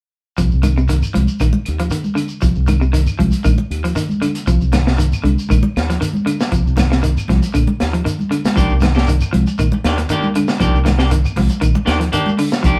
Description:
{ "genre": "afrobeat", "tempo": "117 BPM", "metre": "4/4", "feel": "straight", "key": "C minor", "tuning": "A4 = 436 Hz", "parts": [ { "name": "electric guitar at the edge of break-up", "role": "arpeggios", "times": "0.4-12.8 s", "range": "C3 to F3", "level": "-23 LUFS", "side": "equal", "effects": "none" }, { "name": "fingered electric bass", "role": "bass", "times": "0.4-12.8 s", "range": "Bb1 to Eb2", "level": "-19 LUFS", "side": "equal", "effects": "none" }, { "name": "crunchy breakbeat drum kit", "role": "drums", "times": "0.4-12.8 s", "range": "hi-hat, kick drum, snare drum", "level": "-22 LUFS", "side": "equal", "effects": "none" }, { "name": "shekere", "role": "percussion", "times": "0.4-12.8 s", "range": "none", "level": "-29 LUFS", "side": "equal", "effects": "none" }, { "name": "claves", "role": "percussion", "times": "0.6-12.5 s", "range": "none", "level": "-37 LUFS", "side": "equal", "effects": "none" }, { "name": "congas", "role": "percussion", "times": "0.6-12.4 s", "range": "none", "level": "-24 LUFS", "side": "equal", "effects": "none" }, { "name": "clean electric guitar", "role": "stabs", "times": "8.6-12.8 s", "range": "Eb3 to G4", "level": "-24 LUFS", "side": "equal", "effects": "none" } ], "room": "moderate small room reverb, RT60 0.5 s", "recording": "band playing live in one room", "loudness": "-16 LUFS", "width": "mono", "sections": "0.4-12.8 A section", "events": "none", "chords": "0.4 Cm9" }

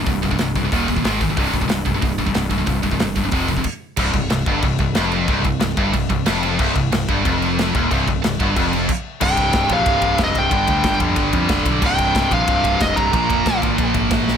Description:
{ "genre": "heavy metal", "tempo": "184 BPM", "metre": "4/4", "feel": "straight", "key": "C minor", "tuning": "A4 = 440 Hz", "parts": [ { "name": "scooped high-gain guitar", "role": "riff", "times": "0.0-14.4 s", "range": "C2 to Bb3", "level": "-22 LUFS", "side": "left 11 dB", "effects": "distortion" }, { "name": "scooped high-gain guitar", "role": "riff", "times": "0.0-14.4 s", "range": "C2 to Bb3", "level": "-22 LUFS", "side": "right 13 dB", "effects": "distortion" }, { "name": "growling picked electric bass", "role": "bass", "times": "0.1-14.4 s", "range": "C1 to F2", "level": "-24 LUFS", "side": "equal", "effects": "overdrive" }, { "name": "modern studio drum kit", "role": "drums", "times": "0.1-14.4 s", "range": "crash cymbal, hi-hat, kick drum, ride cymbal, snare drum", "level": "-22 LUFS", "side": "equal", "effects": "none" }, { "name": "high-gain lead guitar", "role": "melody", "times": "9.2-13.6 s", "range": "Eb5 to Bb5", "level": "-20 LUFS", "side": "equal", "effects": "distortion, tape echo" } ], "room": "light reverb", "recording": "none", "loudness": "-16 LUFS", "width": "side -8 dB against mid", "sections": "0.0-4.0 A section; 4.0-9.2 B section; 9.2-14.4 C section", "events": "stop 3.7-4.0, 8.9-9.2", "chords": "0.0 C5; 0.7 Eb5; 1.0 Ab5; 1.4 C5; 3.3 F5; 3.7 N.C.; 4.0 C5; 10.5 G5; 11.8 C5; 13.1 Bb5" }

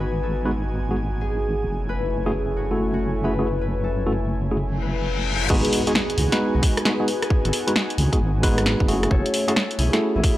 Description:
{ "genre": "UK garage, two-step garage", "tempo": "133 BPM", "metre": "4/4", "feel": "swing 64% on 16ths", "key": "G# phrygian", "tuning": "A4 = 440 Hz", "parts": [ { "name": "concert harp", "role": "melody", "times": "0.0-10.4 s", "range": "B3 to C#5", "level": "-29 LUFS", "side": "left 1 dB", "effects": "none" }, { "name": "airy breathy pad", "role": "sustained chords", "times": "0.0-10.4 s", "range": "A3 to G#5", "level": "-32 LUFS", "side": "equal", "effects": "chorus, vintage 12-bit sampler grit, sidechain pumping" }, { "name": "deep soft wobble bass", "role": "bass", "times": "0.0-10.2 s", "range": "F#1 to C#2", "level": "-24 LUFS", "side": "equal", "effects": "chorus" }, { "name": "tine electric piano", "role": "stabs", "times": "0.5-10.4 s", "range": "G#3 to B4", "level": "-25 LUFS", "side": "equal", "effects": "none" }, { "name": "reverse cymbal and impact", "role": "sound effects", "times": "4.8-7.3 s", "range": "none", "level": "-28 LUFS", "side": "left 3 dB", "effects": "none" }, { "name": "electronic kick drum", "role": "drums", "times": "5.5-10.4 s", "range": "none", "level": "-21 LUFS", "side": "equal", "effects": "none" }, { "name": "punchy analog drum machine", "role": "drums", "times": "5.5-10.4 s", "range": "crash cymbal, hi-hat, rim click, snare drum", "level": "-24 LUFS", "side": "equal", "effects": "none" } ], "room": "little or no reverb", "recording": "dry, gritty hardware recording, cassette tape", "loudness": "-20 LUFS", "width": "side -15 dB against mid", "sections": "0.0-5.5 A section; 5.5-10.4 B section", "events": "reverse cymbal 4.8-5.5; drop 5.5-10.4; impact 5.5-7.3", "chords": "0.0 G#m7; 1.7 F#m7; 5.5 G#m7; 8.9 F#m7" }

